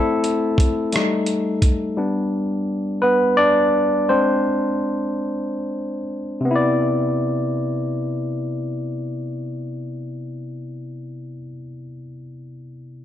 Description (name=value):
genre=slow six-eight R&B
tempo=46-58 BPM (dotted quarters)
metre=6/8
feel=straight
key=C major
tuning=A4 = 440 Hz
part: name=barky tine electric piano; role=accompaniment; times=0.0-13.0 s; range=C3 to D5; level=-20 LUFS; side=left 1 dB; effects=overdrive
part: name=dusty soul sampler-style drum kit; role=drums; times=0.2-1.8 s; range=hi-hat, kick drum, rim click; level=-19 LUFS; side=equal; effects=none
room=light reverb, digital ambience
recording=dark, warm production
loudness=-19 LUFS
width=side -11 dB against mid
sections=0.0-6.5 A section; 6.5-11.6 B section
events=tine electric piano solo 0.0-6.5; slowing down 2.0-6.5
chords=0.0 Am; 0.9 Gsus2; 2.0 G; 4.1 Ab; 6.5 Cmaj9